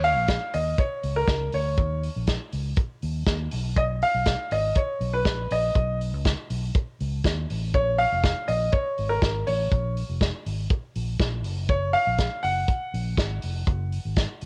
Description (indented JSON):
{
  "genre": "disco",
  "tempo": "121 BPM",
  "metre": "4/4",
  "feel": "straight",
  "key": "unclear",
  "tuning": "A4 = 440 Hz",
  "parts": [
    { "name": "clear grand piano", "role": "melody", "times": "0.0-14.5 s", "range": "A#4 to F#5", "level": "-27 LUFS", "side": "equal", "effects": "none" },
    { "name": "fingered electric bass", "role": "bass", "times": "0.0-14.5 s", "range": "E#1 to D#2", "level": "-30 LUFS", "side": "equal", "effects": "none" },
    { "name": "warm soul drum kit", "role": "drums", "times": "0.0-14.5 s", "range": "hi-hat, kick drum, snare drum", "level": "-28 LUFS", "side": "equal", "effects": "cassette tape" }
  ],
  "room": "light reverb, small room ambience",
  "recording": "home recording on cassette",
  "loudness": "-25 LUFS",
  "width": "mono",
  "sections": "0.0-14.5 A section",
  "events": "none",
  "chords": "0.0 D#5; 3.5 N.C.; 7.7 A#m7; 11.4 F#add9",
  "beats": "0.28 0.78 1.28 | 1.77 2.27 2.77 3.27 | 3.76 4.26 4.76 5.25 | 5.75 6.25 6.75 7.24 | 7.74 8.23 8.73 9.22 | 9.72 10.21 10.71 11.20 | 11.69 12.19 12.68 13.18 | 13.67 14.16"
}